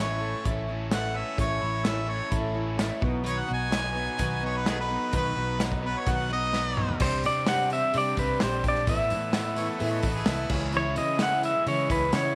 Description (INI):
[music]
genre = folk rock and heartland rock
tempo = 128 BPM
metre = 4/4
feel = straight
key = unclear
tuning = A4 = 441 Hz
[part]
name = clear harmonica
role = second line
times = 0.0-10.6 s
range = E4 to G#5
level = -34 LUFS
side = equal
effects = none
[part]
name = dark grand piano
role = accompaniment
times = 0.0-12.3 s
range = D4 to F#5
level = -43 LUFS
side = equal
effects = none
[part]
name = picked twelve-string acoustic guitar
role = accompaniment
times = 0.0-12.3 s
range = A2 to B4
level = -37 LUFS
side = equal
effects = none
[part]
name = accordion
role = sustained chords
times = 0.0-12.3 s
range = B3 to C#5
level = -44 LUFS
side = equal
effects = none
[part]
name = overdriven electric guitar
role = riff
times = 0.0-12.3 s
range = A2 to G4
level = -38 LUFS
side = equal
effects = none
[part]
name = fingered electric bass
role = bass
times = 0.0-12.3 s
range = A1 to C#3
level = -35 LUFS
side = equal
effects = none
[part]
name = natural country drum kit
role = drums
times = 0.5-12.2 s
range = crash cymbal, hi-hat, kick drum, snare drum, toms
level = -32 LUFS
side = equal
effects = none
[part]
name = tambourine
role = percussion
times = 0.9-12.2 s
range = none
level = -50 LUFS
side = equal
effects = none
[part]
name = pedal steel guitar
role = melody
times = 7.0-12.3 s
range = B4 to F#5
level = -29 LUFS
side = equal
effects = none
[sound]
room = light reverb, small room ambience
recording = none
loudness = -27 LUFS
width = mono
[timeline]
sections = 0.0-7.0 A section; 7.0-12.3 B section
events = harmonica solo 0.0-7.0; drum fill 6.5-7.0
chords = 0.0 A; 3.0 B; 7.0 Csus2; 8.9 Asus2; 10.5 C#m